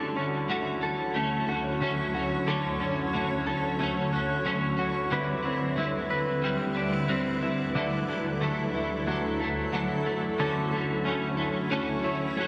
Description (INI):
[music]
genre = dream pop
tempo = 91 BPM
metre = 4/4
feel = straight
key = D major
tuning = A4 = 438 Hz
[part]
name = clean electric guitar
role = accompaniment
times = 0.0-12.5 s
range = D3 to B4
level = -34 LUFS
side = equal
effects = harmonic tremolo, ensemble chorus, dub echo
[part]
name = granular cloud pad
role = sustained chords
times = 0.0-12.5 s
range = D2 to C#5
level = -34 LUFS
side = equal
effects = built-in reverb
[part]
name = direct-recorded clean electric guitar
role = arpeggios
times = 0.0-12.5 s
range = D3 to B4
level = -32 LUFS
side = equal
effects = lush chorus, dub echo
[sound]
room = wet spring reverb, RT60 1.4 s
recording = echo-heavy mix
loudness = -29 LUFS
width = mono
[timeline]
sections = 0.0-10.4 A section; 10.4-12.5 B section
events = none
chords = 0.0 Dmaj7; 5.1 Cmaj7/D; 7.8 Dadd9; 10.4 Dmaj7